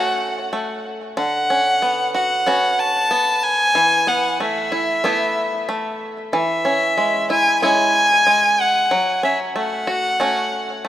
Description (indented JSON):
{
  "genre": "folktronica",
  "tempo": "93 BPM",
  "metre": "4/4",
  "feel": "straight",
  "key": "B dorian",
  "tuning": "A4 = 441 Hz",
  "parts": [
    { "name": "warm violin", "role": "melody", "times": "0.0-10.9 s", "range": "E5 to A5", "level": "-17 LUFS", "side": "equal", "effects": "digital delay" },
    { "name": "bluegrass banjo", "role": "arpeggios", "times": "0.0-10.9 s", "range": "D3 to F#4", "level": "-22 LUFS", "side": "equal", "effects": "digital delay" }
  ],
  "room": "moderate lush hall reverb, RT60 3.2 s",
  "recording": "rough home demo mix",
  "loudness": "-16 LUFS",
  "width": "side -12 dB against mid",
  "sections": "0.0-10.9 A section",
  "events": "none",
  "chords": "0.0 F#m; 1.2 Bmadd9; 3.7 Esus4; 6.3 C#m; 8.9 F#m"
}